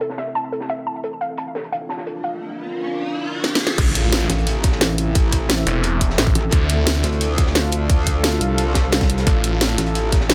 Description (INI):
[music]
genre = dark technical drum and bass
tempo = 175 BPM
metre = 4/4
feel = straight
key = A phrygian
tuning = A4 = 440 Hz
[part]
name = deep dark ambient pad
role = sustained chords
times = 0.0-10.3 s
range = C4 to F5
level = -29 LUFS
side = equal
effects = chorus, built-in reverb, sidechain pumping
[part]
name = warbly dusty pluck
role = arpeggios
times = 0.0-2.3 s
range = A4 to A5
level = -28 LUFS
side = equal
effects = chorus, sidechain pumping, dub echo
[part]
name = crunchy breakbeat drum kit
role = drums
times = 0.0-10.3 s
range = hi-hat, snare drum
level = -33 LUFS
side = equal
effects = high-pass filter on hats, low-pass filter on hats, high-pass filter on snare, low-pass filter on snare, high-pass filter on room, low-pass filter on room
[part]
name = riser and impact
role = sound effects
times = 2.3-5.2 s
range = none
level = -30 LUFS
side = equal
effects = none
[part]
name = drum and bass drum kit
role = drums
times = 3.4-10.3 s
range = crash cymbal, hi-hat, snare drum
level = -22 LUFS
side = equal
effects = none
[part]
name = snarling distorted saw bass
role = bass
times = 3.8-7.0, 9.3-9.8 s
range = E1 to D2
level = -22 LUFS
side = equal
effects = distortion, tube saturation, sidechain pumping
[part]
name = electronic kick drum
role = drums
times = 3.8-10.2 s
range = none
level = -20 LUFS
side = equal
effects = none
[part]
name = metallic wobble bass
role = bass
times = 4.3-10.3 s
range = A1 to D2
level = -23 LUFS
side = equal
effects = distortion, chorus
[sound]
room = light reverb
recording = none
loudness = -20 LUFS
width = mono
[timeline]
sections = 0.0-3.8 A section; 3.8-10.3 B section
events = filter sweep on ambient pad 0.0-3.8; riser 2.3-3.8; drum fill 3.4-3.8; drop 3.8-10.3; impact 3.8-5.2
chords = 0.0 Am; 1.0 Bb; 3.8 Am; 6.5 Dm; 9.3 Am